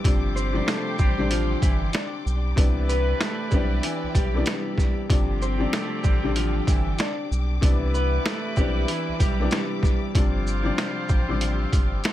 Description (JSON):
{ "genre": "hip hop, boom-bap hip-hop", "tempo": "95 BPM", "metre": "4/4", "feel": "swing 62% on 16ths", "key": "C major", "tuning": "A4 = 441 Hz", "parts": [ { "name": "dark upright piano", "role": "accompaniment", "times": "0.0-12.1 s", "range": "C3 to D4", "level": "-29 LUFS", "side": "left 4 dB", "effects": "cassette tape, high-pass filter, low-pass filter, plate reverb" }, { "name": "warm studio string section", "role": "sustained chords", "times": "0.0-12.1 s", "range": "G4 to D6", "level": "-37 LUFS", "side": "left 2 dB", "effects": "high-pass filter, low-pass filter, plate reverb" }, { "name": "bright saxophone section", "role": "stabs", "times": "0.0-12.1 s", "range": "D3 to C5", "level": "-34 LUFS", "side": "right 2 dB", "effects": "high-pass filter, low-pass filter, ping-pong delay, plate reverb" }, { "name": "round analog bass", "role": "bass", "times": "0.0-12.0 s", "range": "G1 to C2", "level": "-26 LUFS", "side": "equal", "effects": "none" }, { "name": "boom bap sampler-style drum kit", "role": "drums", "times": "0.0-12.1 s", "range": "hi-hat, kick drum, shaker, snare drum", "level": "-23 LUFS", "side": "equal", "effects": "none" }, { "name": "electric guitar at the edge of break-up", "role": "melody", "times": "0.4-10.1 s", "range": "E3 to D5", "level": "-30 LUFS", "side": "right 1 dB", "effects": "high-pass filter, low-pass filter" } ], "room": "little or no reverb", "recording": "none", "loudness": "-21 LUFS", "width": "side -13 dB against mid", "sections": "0.0-12.1 A section", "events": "none", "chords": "0.0 G7sus4; 2.6 Cmaj9; 5.1 G7sus4; 7.6 Cmaj9; 10.1 G7sus4" }